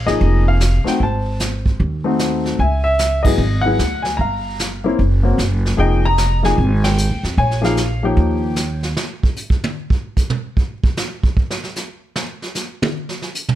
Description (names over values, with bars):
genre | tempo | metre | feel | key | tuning
jazz piano trio | 150 BPM | 4/4 | swing 65% on 8ths | Ab major | A4 = 436 Hz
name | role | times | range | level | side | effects
warm baby grand piano | melody | 0.0-8.8 s | F3 to Bb5 | -19 LUFS | left 2 dB | none
upright bass | bass | 0.0-8.9 s | F1 to Ab2 | -17 LUFS | equal | none
vintage brush drum kit | drums | 0.1-13.6 s | brushed snare drum, crash cymbal, hi-hat, kick drum, ride cymbal, snare drum, toms | -20 LUFS | right 1 dB | none
room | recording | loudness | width
light reverb | none | -16 LUFS | side -13 dB against mid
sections
0.0-9.0 A section; 9.0-13.6 B section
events
band accent 3.2, 6.8; drum solo 9.0-13.6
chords
0.0 Bb7(no3); 1.0 Ab7b9; 2.6 Dbmadd9; 4.2 Gm7; 5.0 N.C.; 5.8 Fm9; 7.4 Bbm7; 8.2 Eb9; 9.0 N.C.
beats
0.20 0.60 | 1.00 1.40 1.79 2.19 | 2.59 2.99 3.39 3.79 | 4.18 4.58 4.98 5.38 | 5.78 6.18 6.58 6.97 | 7.37 7.77 8.17 8.57 | 8.97 9.37 9.76 10.16 | 10.56 10.96 11.36 11.76 | 12.16 12.56 12.95 13.35